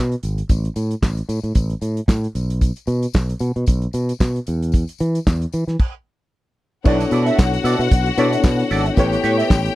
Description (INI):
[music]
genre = disco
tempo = 113 BPM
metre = 4/4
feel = swing 56% on 16ths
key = B minor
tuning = A4 = 440 Hz
[part]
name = fingered electric bass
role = bass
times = 0.0-9.7 s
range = G#1 to E3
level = -20 LUFS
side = equal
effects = none
[part]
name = damped 70s drum kit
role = drums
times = 0.1-9.8 s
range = crash cymbal, handclaps, hi-hat, kick drum, snare drum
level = -16 LUFS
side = equal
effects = none
[part]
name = tambourine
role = percussion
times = 0.2-9.6 s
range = none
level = -40 LUFS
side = left 15 dB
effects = none
[part]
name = reed electric piano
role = accompaniment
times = 6.8-9.8 s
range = B3 to C#5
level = -20 LUFS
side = left 3 dB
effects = overdrive, fast tremolo
[part]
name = clear symphonic string section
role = second line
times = 6.9-9.8 s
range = F#4 to G5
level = -24 LUFS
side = left 6 dB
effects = tape echo
[part]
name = clean electric guitar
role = accompaniment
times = 6.9-9.7 s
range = E4 to E5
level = -23 LUFS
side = right 7 dB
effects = wah
[sound]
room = little or no reverb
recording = dry, close 1970s-style studio recording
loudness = -17 LUFS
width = side -17 dB against mid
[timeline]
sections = 0.0-6.9 A section; 6.9-9.8 B section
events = stop 5.8-6.9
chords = 0.5 N.C.; 6.9 Bm11; 9.0 A9